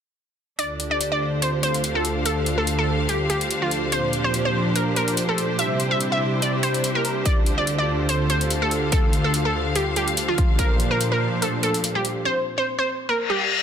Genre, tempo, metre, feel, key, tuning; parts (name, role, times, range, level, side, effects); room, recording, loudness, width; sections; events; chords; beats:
heavy wobble dubstep; 144 BPM; 4/4; swing 55% on 16ths, half-time; D minor; A4 = 440 Hz
wide unison pluck; melody; 0.6-13.5 s; F4 to E5; -24 LUFS; equal; cassette tape, tape echo
supersaw pad; sustained chords; 0.6-12.2 s; D2 to C5; -25 LUFS; equal; sidechain pumping, low-pass filter
electronic hi-hat; drums; 0.6-12.1 s; -27 LUFS; left 1 dB
rich studio string section; texture; 0.6-12.3 s; Bb2 to F5; -28 LUFS; equal; sidechain pumping
electronic kick drum; drums; 7.3-10.7 s; -20 LUFS; equal
reverse cymbal; sound effects; 13.2-13.6 s; -21 LUFS; left 8 dB
light reverb; dense, heavily limited modern master; -20 LUFS; side -8 dB against mid
0.6-13.6 A section
filter sweep on supersaw synth 0.6-13.6; reverse cymbal 13.2-13.6
0.6 Dm; 3.9 Bbadd9; 5.6 C; 7.3 Dm; 10.6 Bbadd9; 12.3 N.C.
| 0.59 1.01 1.42 1.84 | 2.26 2.67 3.09 3.51 | 3.92 4.34 4.76 5.17 | 5.59 6.01 6.42 6.84 | 7.26 7.67 8.09 8.51 | 8.92 9.34 9.76 10.17 | 10.59 11.01 11.42 11.84 | 12.26 12.67 13.09 13.51